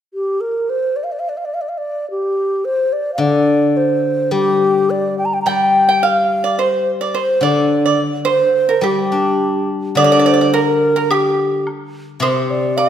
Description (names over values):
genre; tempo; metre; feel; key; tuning
chinese traditional, Chinese chamber ensemble; 107 BPM; 2/4; rubato; G yu mode; A4 = 438 Hz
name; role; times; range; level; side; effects
low xiao; melody; 0.1-12.9 s; G4 to Bb5; -17 LUFS; equal; none
steel-string zither; accompaniment; 3.2-12.9 s; C3 to D4; -18 LUFS; left 3 dB; none
pipa; second line; 5.5-12.9 s; G4 to G5; -18 LUFS; right 5 dB; none
woodblock; percussion; 10.0-12.9 s; none; -26 LUFS; left 1 dB; none
room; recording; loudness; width
moderate scoring stage reverb, RT60 1.4 s; none; -14 LUFS; side -9 dB against mid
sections
1.0-10.0 A section; 10.0-12.9 B section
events
none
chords
none